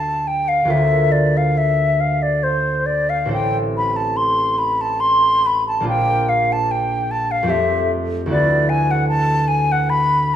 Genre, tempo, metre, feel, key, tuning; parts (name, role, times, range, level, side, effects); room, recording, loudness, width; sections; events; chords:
classical, impressionist duo for flute and harp; 69-76 BPM; 3/4; rubato; A4 = 441 Hz
bright wooden flute; melody; 0.0-10.4 s; C5 to C6; -17 LUFS; left 1 dB
concert harp; accompaniment; 0.0-10.4 s; A1 to C5; -20 LUFS; right 1 dB
moderate recital hall reverb, RT60 1.5 s; minimal, uncompressed stereo recording; -15 LUFS; side -10 dB against mid
0.0-10.4 A section
0.0 Dm7; 0.7 Bbmaj9/D; 3.3 Am; 5.9 Bbadd9; 7.5 Fmaj9; 8.3 D69